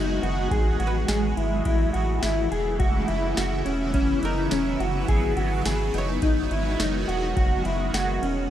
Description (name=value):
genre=dream pop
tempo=105 BPM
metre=4/4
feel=straight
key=unclear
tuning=A4 = 440 Hz
part: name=shimmering ambient pad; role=sustained chords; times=0.0-8.5 s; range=C#3 to F#4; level=-28 LUFS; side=right 2 dB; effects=chorus, built-in reverb, phaser
part: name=mellow electric guitar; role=arpeggios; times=0.0-8.5 s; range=C#4 to G#4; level=-27 LUFS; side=left 2 dB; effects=analog chorus, digital delay
part: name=round analog bass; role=bass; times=0.0-8.5 s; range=E1 to A1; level=-28 LUFS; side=equal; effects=none
part: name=booming analog drum machine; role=drums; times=0.2-8.4 s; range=kick drum, ride cymbal, snare drum, tambourine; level=-27 LUFS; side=equal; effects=overdrive
part: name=koto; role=texture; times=0.9-7.6 s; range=A#4 to C#5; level=-38 LUFS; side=right 2 dB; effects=digital delay
room=light reverb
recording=dark, warm production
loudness=-22 LUFS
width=side -11 dB against mid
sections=0.0-8.5 A section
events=none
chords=0.0 G#m7; 0.5 Amaj7; 2.8 F#7sus4; 5.1 G#m7; 7.4 F#7